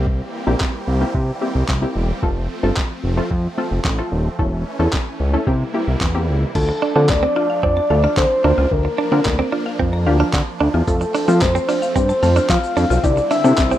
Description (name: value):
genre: dance-pop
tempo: 111 BPM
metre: 4/4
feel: straight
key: F major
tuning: A4 = 440 Hz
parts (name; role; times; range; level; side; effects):
- punchy chord stab; accompaniment; 0.0-13.8 s; A3 to Bb4; -23 LUFS; left 2 dB; chorus, sidechain pumping
- supersaw chords; sustained chords; 0.0-13.8 s; C3 to G4; -28 LUFS; right 2 dB; phaser, sidechain pumping
- fat analog bass; bass; 0.0-13.7 s; Eb1 to F3; -18 LUFS; equal; sidechain pumping
- boom bap sampler-style drum kit; drums; 0.1-13.8 s; crash cymbal, handclaps, hi-hat, kick drum, shaker, snare drum; -21 LUFS; equal; none
- soft octave-layered synth lead; melody; 6.6-13.8 s; A4 to F5; -20 LUFS; left 2 dB; chorus, digital delay
- mallet-like synth pluck; arpeggios; 6.6-13.8 s; C3 to F6; -30 LUFS; left 5 dB; chorus, sidechain pumping, digital delay
- direct-recorded clean electric guitar; riff; 6.7-13.8 s; C4 to D4; -22 LUFS; right 6 dB; analog chorus
- riser; sound effects; 13.7-13.8 s; none; -34 LUFS; right 1 dB; none
room: moderate studio reverb, RT60 0.6 s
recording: rough home demo mix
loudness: -16 LUFS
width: side -12 dB against mid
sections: 0.0-6.6 A section; 6.6-13.8 B section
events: none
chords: 0.0 C7; 2.2 F; 4.4 A/E; 5.5 C7; 6.6 Dm; 8.4 Bb; 10.9 F; 13.0 Cadd9